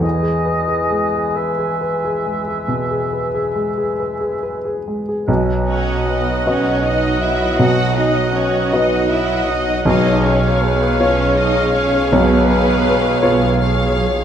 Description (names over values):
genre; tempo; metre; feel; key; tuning
classical; 45-54 BPM (dotted quarters); 12/8; rubato; E major, B major from 5.3 s; A4 = 440 Hz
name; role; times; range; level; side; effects
clear concert grand piano; melody; 0.0-14.2 s; B1 to D#5; -19 LUFS; equal; none
mellow clarinet; second line; 0.0-14.1 s; B4 to D#5; -28 LUFS; equal; none
small flute group; second line; 0.0-14.0 s; B4 to G#5; -27 LUFS; equal; none
warm oboe; second line; 0.0-14.1 s; D#5 to F#5; -25 LUFS; right 3 dB; none
dark bassoon; accompaniment; 0.0-14.1 s; F#3 to G#3; -26 LUFS; equal; none
mellow French horn section; sustained chords; 5.3-14.2 s; B4 to E#5; -24 LUFS; left 5 dB; none
warm symphonic double bass section; bass; 5.3-14.2 s; B1; -22 LUFS; right 3 dB; none
warm studio violin section; melody; 5.7-14.2 s; E#5 to F#5; -28 LUFS; left 5 dB; none
warm symphonic violin section; second line; 5.7-14.0 s; B4 to F#5; -25 LUFS; left 2 dB; none
warm symphonic viola section; accompaniment; 5.7-14.2 s; F#4 to D#5; -26 LUFS; equal; none
rich studio cello section; bass; 5.7-14.0 s; B3 to F#4; -22 LUFS; right 3 dB; none
timpani; percussion; 9.9-10.9 s; B2; -24 LUFS; left 4 dB; none
room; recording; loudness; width
moderate recital hall reverb, RT60 1.2 s; none; -14 LUFS; side -9 dB against mid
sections
0.0-5.3 A section; 5.3-14.2 B section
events
none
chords
0.0 E; 5.3 B; 9.9 C#7/B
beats
| 0.04 1.37 2.69 3.99 | 5.28 6.46 7.60 8.73 | 9.86 10.99 12.10 13.22